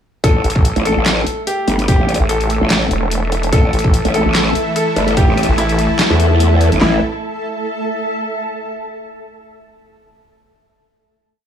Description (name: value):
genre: heavy wobble dubstep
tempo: 146 BPM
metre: 4/4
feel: swing 55% on 16ths, half-time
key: unclear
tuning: A4 = 439 Hz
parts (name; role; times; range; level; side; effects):
- bright concert grand piano; melody; 0.2-7.0 s; E4 to A4; -21 LUFS; left 2 dB; digital delay
- growl bass; bass; 0.2-7.0 s; G1 to E2; -14 LUFS; equal; chorus, overdrive
- dubstep drum kit; drums; 0.2-6.9 s; handclaps, kick drum, snare drum; -14 LUFS; equal; none
- dubstep drum kit; drums; 0.2-6.8 s; handclaps, hi-hat, snare drum; -20 LUFS; equal; overdrive
- granular cloud pad; texture; 1.3-8.4 s; A4 to A5; -22 LUFS; right 1 dB; built-in reverb, sidechain pumping
- vowel-sweep wobble bass; bass; 0.4-5.9 s; E1 to A1; -17 LUFS; equal; chorus, overdrive
- supersaw chords; sustained chords; 3.5-7.0 s; A2 to E5; -21 LUFS; equal; sidechain pumping
room: digital ambience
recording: small room ambience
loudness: -13 LUFS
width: side -9 dB against mid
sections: 0.2-6.8 drop; 6.8-8.5 final chord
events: drop 0.2-6.8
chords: 0.2 A5